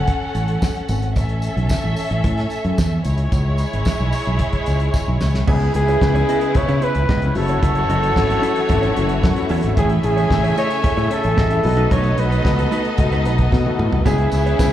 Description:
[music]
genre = disco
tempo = 112 BPM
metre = 4/4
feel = straight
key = C# minor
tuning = A4 = 440 Hz
[part]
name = warm symphonic violin section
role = second line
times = 0.0-14.7 s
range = G#3 to F#5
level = -25 LUFS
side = equal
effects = slapback echo
[part]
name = fingered electric bass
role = bass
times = 0.0-14.7 s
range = F#1 to C#3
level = -19 LUFS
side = equal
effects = none
[part]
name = damped 70s drum kit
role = drums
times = 0.1-14.7 s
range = crash cymbal, hi-hat, kick drum, snare drum, toms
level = -21 LUFS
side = equal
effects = none
[part]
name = tambourine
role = percussion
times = 0.3-5.3, 14.1-14.7 s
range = none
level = -38 LUFS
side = left 1 dB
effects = none
[part]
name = mellow flugelhorn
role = melody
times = 5.5-14.7 s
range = G#4 to C#5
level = -21 LUFS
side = right 1 dB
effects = slapback echo, analog delay
[part]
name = mellow electric guitar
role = accompaniment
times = 5.5-14.6 s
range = A3 to D#5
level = -28 LUFS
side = right 8 dB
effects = slapback echo
[part]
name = warm concert grand piano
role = accompaniment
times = 5.5-14.7 s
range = B2 to E5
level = -24 LUFS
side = left 6 dB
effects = slapback echo
[part]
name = clear studio string section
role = sustained chords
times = 5.5-14.7 s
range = B2 to G#5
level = -30 LUFS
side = left 2 dB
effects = none
[sound]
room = studio ambience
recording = live gig heard through the venue's PA, club reverb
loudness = -16 LUFS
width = side -12 dB against mid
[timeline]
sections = 0.0-5.5 A section; 5.5-14.7 B section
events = drum fill 4.9-5.5, 13.5-14.1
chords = 0.0 F#m; 1.2 A; 3.1 C#m7; 7.4 F#m7; 9.8 Amaj7; 11.6 B7; 14.1 C#m7

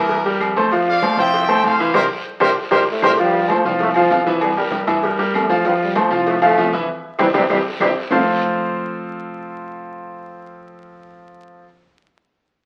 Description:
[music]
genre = latin, salsa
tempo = 195 BPM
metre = 4/4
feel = straight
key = F major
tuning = A4 = 440 Hz
[part]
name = bright trumpet section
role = melody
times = 0.0-3.1 s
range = G4 to G5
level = -24 LUFS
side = equal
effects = none
[part]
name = bright concert grand piano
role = accompaniment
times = 0.0-11.6 s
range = E3 to F5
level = -20 LUFS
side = equal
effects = none
[part]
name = upright bass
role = bass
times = 0.0-11.6 s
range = F1 to G2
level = -35 LUFS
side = equal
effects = none
[part]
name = agogo bells and timbales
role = percussion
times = 0.1-8.2 s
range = none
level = -26 LUFS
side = equal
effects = none
[part]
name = congas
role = percussion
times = 0.1-8.2 s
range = none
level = -34 LUFS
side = equal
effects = none
[part]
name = cowbell and bongos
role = percussion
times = 0.1-8.2 s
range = none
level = -31 LUFS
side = equal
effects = none
[part]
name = guiro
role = percussion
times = 0.1-8.2 s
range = none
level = -39 LUFS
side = equal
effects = none
[part]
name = claves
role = percussion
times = 0.4-8.2 s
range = none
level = -34 LUFS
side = equal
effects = none
[part]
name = warm trombone section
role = melody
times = 2.9-7.9 s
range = G2 to F4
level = -24 LUFS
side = equal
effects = none
[sound]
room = wet studio reverb, RT60 0.9 s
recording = very old 78 rpm record, vinyl crackle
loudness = -17 LUFS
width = mono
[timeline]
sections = 0.0-3.2 A section; 3.2-8.1 B section; 8.1-10.6 C section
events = drum fill 1.9-3.2, 7.2-8.1; band accent 1.9-3.2, 6.9-8.1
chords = 0.0 C7; 0.7 F; 1.9 C7(no3); 3.2 F; 4.4 C7; 5.7 F; 6.9 C; 8.1 F

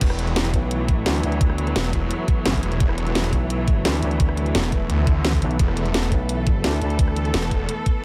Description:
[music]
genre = dark technical drum and bass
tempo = 172 BPM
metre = 4/4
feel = straight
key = unclear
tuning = A4 = 438 Hz
[part]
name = clear studio string section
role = sustained chords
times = 0.0-8.0 s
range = E3 to A4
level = -31 LUFS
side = equal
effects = sidechain pumping
[part]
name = snarling distorted saw bass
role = bass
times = 0.0-7.7 s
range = E1 to D2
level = -26 LUFS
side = equal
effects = distortion, overdrive, sidechain pumping
[part]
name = drum and bass drum kit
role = drums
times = 0.0-7.9 s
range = crash cymbal, hi-hat, rim click, snare drum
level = -27 LUFS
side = equal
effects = none
[part]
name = electronic kick drum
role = drums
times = 0.0-7.9 s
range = none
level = -22 LUFS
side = equal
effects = none
[part]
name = ethereal airy pad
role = texture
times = 0.0-8.0 s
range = B3 to A5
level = -36 LUFS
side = equal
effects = ensemble chorus, built-in reverb, sidechain pumping
[part]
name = growling FM bass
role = bass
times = 0.5-7.3 s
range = B1 to D2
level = -25 LUFS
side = equal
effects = tube saturation
[sound]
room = digital ambience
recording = none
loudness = -21 LUFS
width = mono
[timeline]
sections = 0.0-8.0 A section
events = none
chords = 0.0 E5

